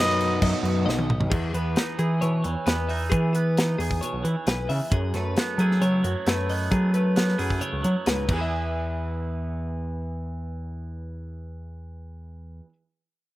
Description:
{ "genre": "math rock and midwest emo", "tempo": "133 BPM", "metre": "4/4", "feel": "straight", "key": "E major", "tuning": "A4 = 438 Hz", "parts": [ { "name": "clear trumpet", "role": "melody", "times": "0.0-0.9 s", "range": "D#5", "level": "-25 LUFS", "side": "equal", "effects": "slapback echo" }, { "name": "twelve-string electric guitar", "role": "arpeggios", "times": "0.0-12.7 s", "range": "G#4 to E5", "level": "-32 LUFS", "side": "left 5 dB", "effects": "slapback echo" }, { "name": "crunchy overdriven guitar", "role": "riff", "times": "0.0-1.1 s", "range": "B2 to A4", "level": "-28 LUFS", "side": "equal", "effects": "slapback echo" }, { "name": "growling picked electric bass", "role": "bass", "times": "0.0-12.6 s", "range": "B1 to F#3", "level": "-25 LUFS", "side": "equal", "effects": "overdrive" }, { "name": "crisp fusion drum kit", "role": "drums", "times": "0.1-8.4 s", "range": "crash cymbal, hi-hat, kick drum, snare drum, toms", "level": "-26 LUFS", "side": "equal", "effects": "none" }, { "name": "twangy electric guitar", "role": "accompaniment", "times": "1.3-12.7 s", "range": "E2 to G#4", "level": "-32 LUFS", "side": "right 5 dB", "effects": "slapback echo" } ], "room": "little or no reverb", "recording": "recorded outdoors, with no room sound", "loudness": "-22 LUFS", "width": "side -16 dB against mid", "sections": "0.0-1.3 A section; 1.3-8.5 B section; 8.5-12.1 C section", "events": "drum fill 0.9-1.3", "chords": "0.0 B7; 1.3 Emaj7; 4.9 F#m11; 8.3 E" }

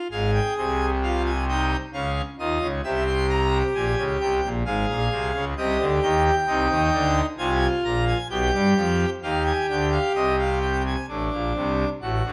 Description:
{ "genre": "classical, baroque-style 3-part fugue for pipe organ", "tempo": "65 BPM", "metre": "3/4", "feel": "straight", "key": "F minor", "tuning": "A4 = 441 Hz", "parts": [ { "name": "pipe organ, full organ", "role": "solo", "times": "0.0-12.3 s", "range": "Ab1 to C6", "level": "-23 LUFS", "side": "equal", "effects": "none" } ], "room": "wet stone room reverb, RT60 0.9 s", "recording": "none", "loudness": "-23 LUFS", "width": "mono", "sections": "0.1-11.1 A section; 11.1-12.3 B section", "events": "none", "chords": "0.1 Fm/Ab; 1.9 Dbadd9; 2.8 C7; 4.7 Fm/Ab; 5.6 Cm; 7.4 Fmadd11; 8.3 G7/B; 10.2 Cm; 11.1 D7/A" }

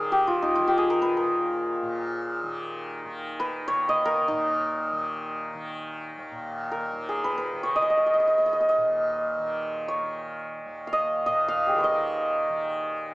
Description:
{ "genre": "indian classical, Hindustani", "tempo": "free time", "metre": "none", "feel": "none", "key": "Eb raga charukeshi", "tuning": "A4 = 440 Hz", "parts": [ { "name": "santur", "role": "melody", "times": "0.0-13.1 s", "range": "Eb4 to F5", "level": "-24 LUFS", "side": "equal", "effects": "none" }, { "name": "tanpura", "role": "drone", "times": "0.0-13.1 s", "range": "Eb2 to Eb3", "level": "-34 LUFS", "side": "equal", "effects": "none" } ], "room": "moderate recital hall reverb, RT60 1.5 s", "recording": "small speaker sound", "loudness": "-23 LUFS", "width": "side -20 dB against mid", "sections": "0.0-6.3 A section; 6.3-13.1 A section", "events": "none", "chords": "none" }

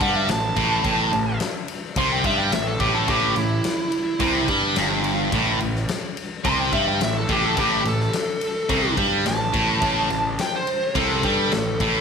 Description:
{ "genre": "blues rock power trio and southern rock", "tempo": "107 BPM", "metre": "4/4", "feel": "straight", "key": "unclear", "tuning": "A4 = 442 Hz", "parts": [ { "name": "smooth overdriven lead guitar", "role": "melody", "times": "0.0-12.0 s", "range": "E4 to C6", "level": "-24 LUFS", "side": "right 1 dB", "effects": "none" }, { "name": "distorted electric guitar", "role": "riff", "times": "0.0-12.0 s", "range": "G2 to G3", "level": "-22 LUFS", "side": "equal", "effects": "overdrive" }, { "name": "fuzz picked electric bass", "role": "bass", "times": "0.0-12.0 s", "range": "G1 to G2", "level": "-27 LUFS", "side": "equal", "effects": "overdrive" }, { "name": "huge arena drum kit", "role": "drums", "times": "0.0-11.9 s", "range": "kick drum, ride cymbal, snare drum", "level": "-28 LUFS", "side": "left 3 dB", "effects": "none" } ], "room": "moderate echo chamber reverb, RT60 1.7 s, small room ambience", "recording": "1960s-style stereo", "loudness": "-19 LUFS", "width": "side -6 dB against mid", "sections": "0.0-12.0 A section", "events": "none", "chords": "none" }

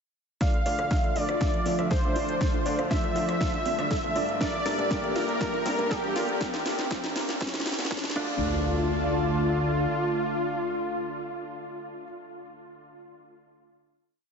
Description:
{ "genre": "progressive house", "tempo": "120 BPM", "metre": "4/4", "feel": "straight", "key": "D minor", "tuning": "A4 = 440 Hz", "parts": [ { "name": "wide unison lead", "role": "melody", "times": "0.4-12.0 s", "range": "F4 to F5", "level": "-30 LUFS", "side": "equal", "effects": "sidechain pumping, analog delay" }, { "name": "lush unison pad", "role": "sustained chords", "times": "0.4-12.0 s", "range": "D3 to A5", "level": "-33 LUFS", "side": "equal", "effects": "chorus, phaser, sidechain pumping" }, { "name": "analog pluck", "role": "arpeggios", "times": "0.4-8.6 s", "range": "C4 to D5", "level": "-37 LUFS", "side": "equal", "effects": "none" }, { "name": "warm concert grand piano", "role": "stabs", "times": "0.4-12.0 s", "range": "G2 to F5", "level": "-34 LUFS", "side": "equal", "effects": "sidechain pumping, low-pass filter, ping-pong delay" }, { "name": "electronic kick drum", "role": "drums", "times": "0.4-8.3 s", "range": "none", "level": "-29 LUFS", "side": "equal", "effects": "overdrive" }, { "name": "house drum kit", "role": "drums", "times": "0.4-8.3 s", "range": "crash cymbal, hi-hat, rim click, snare drum", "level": "-35 LUFS", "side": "equal", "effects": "overdrive, sidechain pumping on hats, sidechain pumping on cymbals" }, { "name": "riser and impact", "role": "sound effects", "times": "3.5-12.1 s", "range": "none", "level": "-40 LUFS", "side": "right 1 dB", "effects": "none" }, { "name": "fat analog bass", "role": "bass", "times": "0.5-9.9 s", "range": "D1 to G2", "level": "-35 LUFS", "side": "equal", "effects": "none" } ], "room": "wet huge ambient reverb, RT60 7.4 s", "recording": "dreamy mix soaked in reverb, high-pass filter, nothing above 7.9 kHz", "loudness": "-25 LUFS", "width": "side -6 dB against mid", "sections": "0.4-8.4 build; 8.4-12.4 final hit", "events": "build-up 0.4-8.4; drum fill 0.4-8.4; filter sweep on grand piano 0.4-6.4; filter sweep 0.4-8.4", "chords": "0.4 Dm; 4.4 Gmadd9; 6.4 Csus2; 8.2 Dm" }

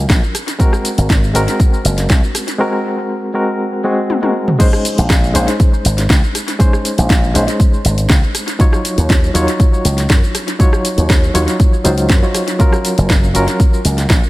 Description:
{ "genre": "nu-disco, nu disco", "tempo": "120 BPM", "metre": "4/4", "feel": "straight", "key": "Bb minor", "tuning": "A4 = 440 Hz", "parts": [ { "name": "barky reed electric piano", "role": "accompaniment", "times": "0.0-14.3 s", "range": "Gb3 to Db5", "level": "-18 LUFS", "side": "equal", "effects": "overdrive, fast tremolo, sidechain pumping, analog delay" }, { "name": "slap bass with an envelope filter", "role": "bass", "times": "0.0-14.2 s", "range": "Gb1 to Gb2", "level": "-15 LUFS", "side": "equal", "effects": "none" }, { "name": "electronic kick drum", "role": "drums", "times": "0.1-14.2 s", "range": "none", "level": "-12 LUFS", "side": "equal", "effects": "overdrive" }, { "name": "house drum kit", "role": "drums", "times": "0.1-14.3 s", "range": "crash cymbal, hi-hat, rim click, shaker, snare drum, toms", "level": "-19 LUFS", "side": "equal", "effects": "overdrive, analog delay" } ], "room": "little or no reverb", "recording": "echo-heavy mix", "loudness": "-11 LUFS", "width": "side -18 dB against mid", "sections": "0.0-4.6 A section; 4.6-14.3 B section", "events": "break 2.6-4.6; drum fill 4.1-4.6; drop 4.6-14.3", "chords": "0.3 Ab9; 4.6 Bbm11; 8.6 Ebm9; 12.6 Gbmaj7" }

